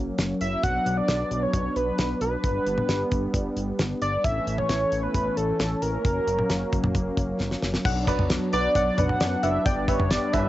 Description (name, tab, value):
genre	synth-pop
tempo	133 BPM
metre	4/4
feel	straight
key	B minor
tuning	A4 = 441 Hz
part	brassy analog pad	sustained chords	0.0-10.5 s	E3 to D4	-29 LUFS	equal	chorus, cassette tape
part	fat analog bass	bass	0.0-10.5 s	F#1 to F#2	-31 LUFS	equal	none
part	damped 70s drum kit	drums	0.2-10.4 s	cowbell, crash cymbal, hi-hat, kick drum, snare drum, toms	-26 LUFS	equal	cassette tape
part	wide unison lead	melody	0.4-10.5 s	A4 to F#5	-26 LUFS	equal	cassette tape, analog delay
part	soft round pluck	second line	7.9-10.3 s	D5 to G5	-32 LUFS	left 6 dB	chorus, cassette tape, analog delay
part	warm baby grand piano	accompaniment	8.1-10.5 s	B3 to D5	-30 LUFS	right 5 dB	cassette tape
room	wet booth ambience, RT60 0.2 s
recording	home recording on cassette, nothing above 7.9 kHz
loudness	-22 LUFS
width	side -15 dB against mid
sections	0.0-7.9 A section; 7.9-10.5 B section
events	drum fill 7.4-7.9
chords	0.0 F#; 0.6 Bm; 2.4 G; 4.2 A; 6.0 F#; 7.9 Bm; 9.7 G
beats	0.18 | 0.63 1.08 1.54 1.99 | 2.44 2.89 3.34 3.79 | 4.24 4.69 5.14 5.60 | 6.05 6.50 6.95 7.40 | 7.85 8.30 8.75 9.21 | 9.66 10.11